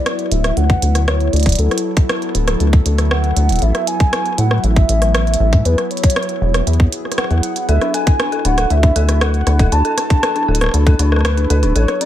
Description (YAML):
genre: IDM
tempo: 118 BPM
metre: 4/4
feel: straight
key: D lydian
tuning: A4 = 440 Hz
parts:
  - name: warbly nostalgic lead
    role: melody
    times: 0.0-12.1 s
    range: A4 to A5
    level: -21 LUFS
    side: equal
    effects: lush chorus, cassette tape, tape echo
  - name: warbly tape-like pad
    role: sustained chords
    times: 0.0-12.1 s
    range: F#3 to A4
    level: -24 LUFS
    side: left 1 dB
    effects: chorus, built-in reverb, phaser
  - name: glitchy drum kit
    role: drums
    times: 0.1-12.1 s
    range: hi-hat, rim click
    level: -21 LUFS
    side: right 1 dB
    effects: none
  - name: deep acid bass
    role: bass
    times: 0.3-11.9 s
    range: D1 to A2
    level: -14 LUFS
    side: equal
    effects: none
  - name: electronic kick drum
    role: drums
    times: 0.7-11.0 s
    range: none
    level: -12 LUFS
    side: equal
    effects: none
  - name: dark detuned synth bell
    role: arpeggios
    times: 7.7-12.1 s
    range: C#4 to A4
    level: -22 LUFS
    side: left 4 dB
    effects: chorus, tape echo
room: digital ambience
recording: none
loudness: -13 LUFS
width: side -12 dB against mid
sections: 0.0-12.1 A section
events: none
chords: 0.0 D; 3.6 A5; 5.7 E; 7.7 D